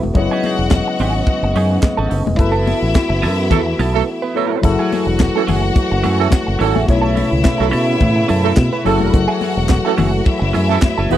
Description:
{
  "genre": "disco",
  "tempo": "107 BPM",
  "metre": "4/4",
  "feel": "straight",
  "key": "F# dorian",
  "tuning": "A4 = 444 Hz",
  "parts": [
    { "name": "clean electric guitar", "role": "accompaniment", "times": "0.0-11.2 s", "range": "G#3 to B4", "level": "-23 LUFS", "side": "right 6 dB", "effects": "wah" },
    { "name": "tine electric piano", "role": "accompaniment", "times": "0.0-11.2 s", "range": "B2 to D#5", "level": "-22 LUFS", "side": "left 5 dB", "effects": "none" },
    { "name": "warm French horn section", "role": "sustained chords", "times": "0.0-11.2 s", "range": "C#3 to D#5", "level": "-22 LUFS", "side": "right 1 dB", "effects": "none" },
    { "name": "fingered electric bass", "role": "bass", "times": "0.0-11.2 s", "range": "E1 to B2", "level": "-18 LUFS", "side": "equal", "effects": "none" },
    { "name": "congas", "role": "percussion", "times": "0.0-11.0 s", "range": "none", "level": "-24 LUFS", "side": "left 6 dB", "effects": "none" },
    { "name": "bright studio string section", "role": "second line", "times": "0.1-11.2 s", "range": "E4 to F#5", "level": "-24 LUFS", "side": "left 4 dB", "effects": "none" },
    { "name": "tight funk drum kit", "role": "drums", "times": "0.1-11.2 s", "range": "crash cymbal, handclaps, hi-hat, kick drum, snare drum", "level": "-14 LUFS", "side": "equal", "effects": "none" },
    { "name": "mellow horn section", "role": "stabs", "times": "3.5-11.2 s", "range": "E3 to B4", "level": "-18 LUFS", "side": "right 18 dB", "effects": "none" }
  ],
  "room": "little or no reverb",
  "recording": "dry, close 1970s-style studio recording",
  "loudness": "-13 LUFS",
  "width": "side -12 dB against mid",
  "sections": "0.0-4.6 A section; 4.6-11.2 B section",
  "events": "band accent 2.4-4.6; break 4.1-4.6",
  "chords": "0.1 Amaj9#11 (rootless); 2.4 B7sus4/F#; 4.6 F#m9; 6.9 B9sus4; 8.9 F#m9"
}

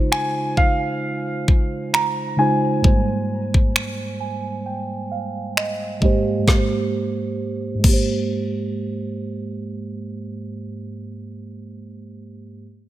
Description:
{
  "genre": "contemporary R&B",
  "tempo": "66 BPM",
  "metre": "4/4",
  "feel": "swing 54% on 16ths",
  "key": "Ab major",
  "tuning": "A4 = 441 Hz",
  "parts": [
    { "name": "muted felt-like synth keys", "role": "accompaniment", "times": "0.0-12.6 s", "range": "Ab2 to Ab5", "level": "-24 LUFS", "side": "right 2 dB", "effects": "chorus, low-pass filter" },
    { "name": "warm grand piano", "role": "melody", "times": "0.1-5.5 s", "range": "F5 to Bb5", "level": "-23 LUFS", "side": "equal", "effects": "low-pass filter, tape echo" },
    { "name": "trap drum kit", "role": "drums", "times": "0.1-8.1 s", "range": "crash cymbal, finger snaps, kick drum, snare drum", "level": "-18 LUFS", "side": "equal", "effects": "none" }
  ],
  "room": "little or no reverb",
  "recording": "none",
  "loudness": "-19 LUFS",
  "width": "side -14 dB against mid",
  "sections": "0.0-6.5 A section; 6.5-10.1 B section",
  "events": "filter sweep 0.0-6.5; synth keys fill 3.8-6.5",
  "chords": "0.0 Dbmaj7; 2.8 Abmaj7"
}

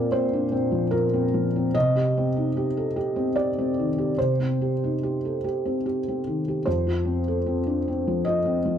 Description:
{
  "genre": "neoclassical minimalist piano",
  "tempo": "74 BPM",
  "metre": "3/4",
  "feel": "rubato",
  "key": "unclear",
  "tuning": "A4 = 440 Hz",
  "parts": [
    { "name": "felt-muted upright piano", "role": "solo", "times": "0.0-8.8 s", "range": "F2 to Eb5", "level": "-22 LUFS", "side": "equal", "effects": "none" }
  ],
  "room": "studio reverb",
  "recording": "dry, close 1970s-style studio recording",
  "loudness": "-22 LUFS",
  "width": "side -9 dB against mid",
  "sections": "0.0-8.8 A section",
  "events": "none",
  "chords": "0.0 Bbadd9; 1.7 Cm; 6.7 F"
}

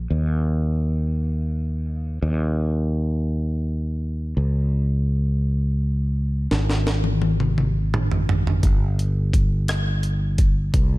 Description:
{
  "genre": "six-eight pop ballad",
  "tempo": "56 BPM (dotted quarters)",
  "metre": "6/8",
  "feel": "straight",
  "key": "unclear",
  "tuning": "A4 = 439 Hz",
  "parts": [
    { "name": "fretless electric bass", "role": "bass", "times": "0.0-11.0 s", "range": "G1 to Eb2", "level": "-21 LUFS", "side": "equal", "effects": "none" },
    { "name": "jungle sampler-style drum kit", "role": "drums", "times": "6.5-10.9 s", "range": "hi-hat, kick drum, rim click, snare drum, toms", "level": "-21 LUFS", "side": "equal", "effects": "none" }
  ],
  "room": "digital ambience",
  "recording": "dark, warm production",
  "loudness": "-20 LUFS",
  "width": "side -20 dB against mid",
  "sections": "0.0-4.4 A section; 4.4-11.0 B section",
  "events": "drum fill 6.5-8.6",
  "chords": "none"
}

